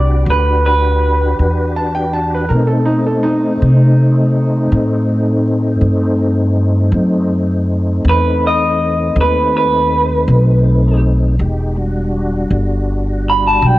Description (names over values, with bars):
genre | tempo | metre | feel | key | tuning
blues | 54 BPM (dotted quarters) | 12/8 | straight | unclear | A4 = 439 Hz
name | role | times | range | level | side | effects
electric guitar through a small old amp | melody | 0.0-13.8 s | B4 to B5 | -14 LUFS | right 1 dB | none
tonewheel organ | sustained chords | 0.0-13.8 s | G3 to G4 | -18 LUFS | left 1 dB | slow rotary speaker, chorus vibrato, cassette tape
upright bass | bass | 0.0-13.8 s | E1 to C3 | -14 LUFS | equal | none
bright upright piano | second line | 1.8-5.4 s | D#4 to A5 | -20 LUFS | right 1 dB | cassette tape
room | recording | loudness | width
light reverb, small room ambience | home recording on cassette | -12 LUFS | side -17 dB against mid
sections
0.0-13.8 A section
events
none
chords
0.0 Em7; 2.5 B7b9; 11.4 Em7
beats
0.26 1.37 | 2.48 3.60 4.71 5.82 | 6.94 8.05 9.16 10.28 | 11.39 12.51 13.62